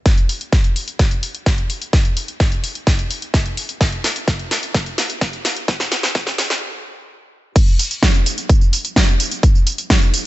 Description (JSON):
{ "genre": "EDM", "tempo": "128 BPM", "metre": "4/4", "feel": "straight", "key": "none", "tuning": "none", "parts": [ { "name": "big-room dance drum kit", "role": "drums", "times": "0.1-10.2 s", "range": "crash cymbal, hi-hat, snare drum, tambourine", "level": "-20 LUFS", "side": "equal", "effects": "high-pass filter on snare, high-pass filter on hats, high-pass filter on cymbals, high-pass filter on perc" }, { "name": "electronic kick drum", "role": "drums", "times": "0.1-10.0 s", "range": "none", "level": "-14 LUFS", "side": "equal", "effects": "none" } ], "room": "digital ambience", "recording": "high-pass filter, nothing above 8.0 kHz", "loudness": "-15 LUFS", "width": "side -16 dB against mid", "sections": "0.1-7.6 A section; 7.6-10.3 B section", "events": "build-up 0.1-7.6; drum fill 0.1-6.6; filter sweep 0.1-7.6; stop 6.6-7.6; drop 7.6-10.3", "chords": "none", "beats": "| 0.06 0.53 0.99 1.46 | 1.93 2.40 2.87 3.34 | 3.81 4.28 4.75 5.21 | 5.68 6.15 6.62 7.09 | 7.56 8.03 8.49 8.96 | 9.43 9.90" }